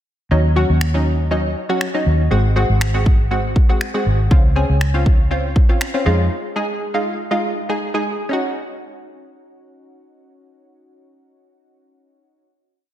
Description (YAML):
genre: dance-pop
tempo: 120 BPM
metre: 4/4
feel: straight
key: Eb dorian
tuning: A4 = 440 Hz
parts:
  - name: punchy chord stab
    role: accompaniment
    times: 0.3-12.5 s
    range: Gb3 to Ab4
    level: -20 LUFS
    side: equal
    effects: chorus, sidechain pumping
  - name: vintage muted fingered electric bass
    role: bass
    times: 0.3-6.3 s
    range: Ab1 to F2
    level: -16 LUFS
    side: equal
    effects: sidechain pumping
  - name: pop drum kit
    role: drums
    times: 0.8-5.9 s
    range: finger snaps, kick drum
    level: -16 LUFS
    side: equal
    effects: none
room: light reverb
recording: none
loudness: -15 LUFS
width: side -12 dB against mid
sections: 0.3-8.3 verse; 8.3-12.3 final chord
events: none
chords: 0.3 Ebm7; 2.3 Ab7; 4.3 Dbmaj7; 6.1 Fm7; 8.3 Ebm7